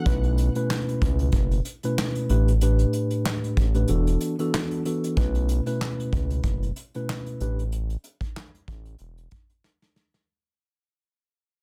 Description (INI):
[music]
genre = hip hop, boom-bap hip-hop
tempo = 94 BPM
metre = 4/4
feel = swing 56% on 16ths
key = unclear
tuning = A4 = 440 Hz
[part]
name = mellow tine electric piano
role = accompaniment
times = 0.0-7.6 s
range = A2 to B4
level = -29 LUFS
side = equal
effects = cassette tape, high-pass filter, low-pass filter
[part]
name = round analog bass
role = bass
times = 0.1-9.3 s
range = E1 to C#2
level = -26 LUFS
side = equal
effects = none
[part]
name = soft brush drum kit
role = drums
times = 0.1-10.3 s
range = handclaps, hi-hat, kick drum, snare drum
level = -30 LUFS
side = equal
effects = none
[sound]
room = light reverb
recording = dense, heavily limited modern master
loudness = -25 LUFS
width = mono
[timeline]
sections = 0.0-5.2 A section; 5.2-10.3 B section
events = break 3.9-5.2, 7.7-10.3; fade-out 5.2-10.3; drum fill 9.6-10.3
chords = 0.1 B9sus4; 2.3 A9sus4; 3.9 E9sus4; 5.2 B9sus4; 7.4 A9sus4; 9.0 N.C.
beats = | 0.06 0.70 1.34 1.98 | 2.62 3.25 3.89 4.53 | 5.17 5.81 6.45 7.08 | 7.72 8.36 9.00 9.64